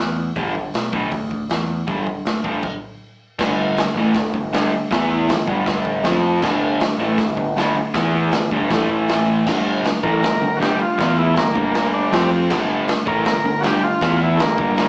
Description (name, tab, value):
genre	garage rock duo or trio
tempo	158 BPM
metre	4/4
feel	straight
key	unclear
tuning	A4 = 440 Hz
part	growling picked electric bass	bass	0.0-14.9 s	G1 to F2	-28 LUFS	equal	overdrive
part	raw garage guitar	riff	0.4-14.9 s	G2 to F4	-22 LUFS	equal	overdrive, slapback echo
part	raw garage drum kit	drums	0.4-14.9 s	crash cymbal, hi-hat, kick drum, snare drum	-25 LUFS	equal	none
part	combo organ	melody	10.0-14.9 s	G3 to Bb4	-22 LUFS	equal	none
room	moderate plate reverb, RT60 0.9 s, small room ambience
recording	live gig heard through the venue's PA, club reverb, small speaker sound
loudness	-19 LUFS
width	mono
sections	0.0-3.4 A section; 3.4-9.5 B section; 9.5-14.9 C section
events	stop 2.6-3.4; transistor combo organ solo 9.5-14.9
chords	0.0 G5; 4.9 E5; 5.3 G5; 6.0 F5; 6.4 G5; 7.9 E5; 8.3 G5; 8.7 A5; 9.5 G5; 11.0 E5; 11.4 G5; 12.1 F5; 12.5 G5; 14.0 E5